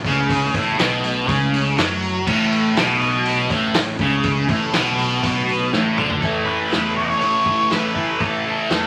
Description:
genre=psychedelic rock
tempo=121 BPM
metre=4/4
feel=straight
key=A major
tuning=A4 = 440 Hz
part: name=string machine, cellos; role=sustained chords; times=0.0-8.9 s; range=E3 to A4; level=-37 LUFS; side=equal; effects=none
part: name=fuzz fingered electric bass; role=bass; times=0.0-8.9 s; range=A1 to F#2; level=-29 LUFS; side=equal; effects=overdrive
part: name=vintage drum kit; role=drums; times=0.0-8.8 s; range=crash cymbal, hi-hat, kick drum, snare drum, toms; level=-26 LUFS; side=equal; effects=none
part: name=thick fuzz guitar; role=riff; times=0.1-8.9 s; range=A2 to A3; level=-21 LUFS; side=equal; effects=distortion, phaser
part: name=octave-fuzz lead guitar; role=melody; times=6.2-8.9 s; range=A4 to D#5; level=-24 LUFS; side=equal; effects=distortion
room=moderate studio reverb, RT60 0.6 s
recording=vinyl crackle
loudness=-19 LUFS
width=mono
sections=0.0-6.2 A section; 6.2-8.9 B section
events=drum fill 5.7-6.2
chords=0.0 A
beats=| 0.29 0.79 1.28 1.77 | 2.27 2.76 3.26 3.75 | 4.25 4.74 5.24 5.73 | 6.23 6.72 7.22 7.71 | 8.21 8.71

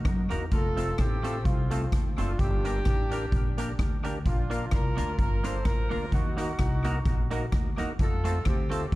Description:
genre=ska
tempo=128 BPM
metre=4/4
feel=swing 55% on 8ths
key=Bb major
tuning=A4 = 440 Hz
part: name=clear horn section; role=melody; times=0.0-8.9 s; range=C4 to C5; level=-34 LUFS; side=equal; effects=dub echo
part: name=upright bass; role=bass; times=0.0-9.0 s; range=F1 to Gb2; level=-30 LUFS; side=equal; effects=none
part: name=semi-hollow electric guitar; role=accompaniment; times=0.1-8.8 s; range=A3 to Bb4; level=-37 LUFS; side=right 4 dB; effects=spring reverb, dub echo
part: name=street-band drum kit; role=drums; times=0.1-9.0 s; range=hi-hat, kick drum, rim click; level=-28 LUFS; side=equal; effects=none
part: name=percussive tonewheel organ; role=stabs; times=0.3-8.9 s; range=A3 to Bb4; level=-38 LUFS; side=left 2 dB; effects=overdrive, slow rotary speaker, dub echo
room=small room ambience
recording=dark, warm production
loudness=-25 LUFS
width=side -18 dB against mid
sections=0.0-9.0 A section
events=none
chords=0.0 Ebm; 0.5 F; 2.4 Gm; 4.3 Bb; 6.1 Ebm; 8.0 F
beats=0.05 | 0.52 0.99 1.46 1.92 | 2.39 2.86 3.32 3.79 | 4.26 4.72 5.19 5.66 | 6.12 6.59 7.06 7.52 | 7.99 8.46 8.92

